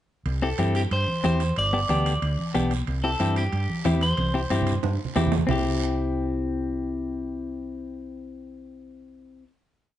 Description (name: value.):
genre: latin, cumbia.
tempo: 184 BPM.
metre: 4/4.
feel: straight.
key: C major.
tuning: A4 = 440 Hz.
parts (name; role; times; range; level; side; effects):
hollow-body short-scale fingered electric bass; bass; 0.3-9.5 s; G1 to G2; -26 LUFS; right 1 dB; none.
guiro; percussion; 0.3-5.6 s; none; -40 LUFS; right 7 dB; none.
timbales; percussion; 0.3-5.6 s; none; -35 LUFS; right 8 dB; none.
electric guitar at the edge of break-up; melody; 0.4-5.1 s; G4 to D5; -28 LUFS; equal; spring reverb, slapback echo.
semi-hollow electric guitar; accompaniment; 0.4-9.5 s; B3 to G4; -28 LUFS; left 3 dB; none.
congas; percussion; 0.6-5.6 s; none; -31 LUFS; right 2 dB; none.
room: light reverb.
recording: dark, warm production, nothing above 10.5 kHz.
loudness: -22 LUFS.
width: side -12 dB against mid.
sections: 0.3-5.5 A section; 5.5-8.1 final chord.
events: drum fill 4.2-5.5.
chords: 0.3 C; 1.6 G; 2.9 C.